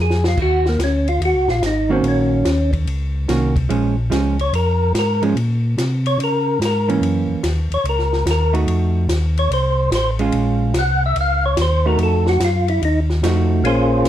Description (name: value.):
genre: soul jazz organ trio.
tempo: 145 BPM.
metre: 4/4.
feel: swing 66% on 8ths.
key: Bb minor.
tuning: A4 = 440 Hz.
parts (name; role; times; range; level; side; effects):
percussive tonewheel organ; melody; 0.0-14.1 s; Bb3 to Gb5; -19 LUFS; equal; slow rotary speaker.
mellow tonewheel organ; bass; 0.0-14.1 s; Ab1 to Db3; -18 LUFS; equal; chorus vibrato, slow rotary speaker.
compact cocktail drum kit; drums; 0.1-14.1 s; crash cymbal, hi-hat, kick drum, ride cymbal, snare drum; -26 LUFS; equal; none.
hollow-body jazz guitar; accompaniment; 1.9-13.6 s; Eb3 to Gb4; -20 LUFS; right 5 dB; none.
room: moderate studio reverb, RT60 0.6 s.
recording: dark, warm production.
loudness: -15 LUFS.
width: side -11 dB against mid.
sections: 0.0-13.6 A section.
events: drum fill 0.0-0.4; tonewheel organ solo 0.0-13.6.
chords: 0.4 Ebm7; 3.7 Bbm7; 7.0 Gb7; 8.7 F7b9; 10.3 Bbm7; 12.0 F7b9.